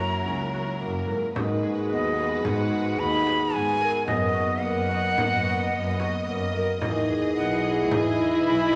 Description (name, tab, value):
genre	contemporary instrumental, chamber music in an uneven meter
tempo	110 BPM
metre	5/4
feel	straight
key	unclear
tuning	A4 = 440 Hz
part	breathy bright jazz flute	melody	0.0-8.8 s	D#5 to B5	-29 LUFS	equal	none
part	rich studio string section	sustained chords	0.0-8.8 s	E3 to D#5	-34 LUFS	equal	none
part	concert harp	arpeggios	0.0-8.8 s	A#3 to A#4	-30 LUFS	equal	none
part	clear double bass	bass	0.0-8.7 s	B1 to G#2	-33 LUFS	equal	none
part	frame drum	percussion	1.4-8.8 s	none	-35 LUFS	equal	none
part	dark French horn	second line	6.8-8.8 s	E4	-27 LUFS	equal	none
room	wet recital hall reverb, RT60 1.6 s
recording	none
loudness	-25 LUFS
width	mono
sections	0.0-1.4 A section; 1.4-8.8 B section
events	none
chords	0.0 F#7; 1.4 G#m7; 4.1 Bmaj7/F#; 6.8 Emaj7